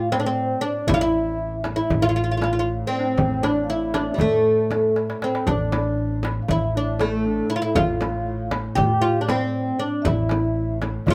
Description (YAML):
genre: Turkish makam ensemble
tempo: 236 BPM (eighths)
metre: 9/8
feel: straight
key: A makam ussak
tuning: A4 = 439 Hz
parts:
  - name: oud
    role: melody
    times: 0.0-11.1 s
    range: G3 to G4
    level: -26 LUFS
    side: equal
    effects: none
  - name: mellow clarinet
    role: second line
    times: 0.0-11.1 s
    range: A3 to G4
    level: -31 LUFS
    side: equal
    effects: none
  - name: vibraphone with soft mallets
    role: second line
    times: 0.0-11.1 s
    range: A4 to G5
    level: -32 LUFS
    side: equal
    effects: none
  - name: upright bass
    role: bass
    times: 0.0-11.1 s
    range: A1 to A2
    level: -30 LUFS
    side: equal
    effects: none
  - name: warm double bass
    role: drone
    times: 0.0-11.1 s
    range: A2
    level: -36 LUFS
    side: equal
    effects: none
  - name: darbuka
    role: percussion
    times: 0.1-11.1 s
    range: none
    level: -31 LUFS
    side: equal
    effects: none
  - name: frame drum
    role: percussion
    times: 0.1-11.1 s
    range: none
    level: -29 LUFS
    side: equal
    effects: none
room: light reverb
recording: none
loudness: -22 LUFS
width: mono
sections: 0.0-11.1 A section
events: drum fill 5.0-5.5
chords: none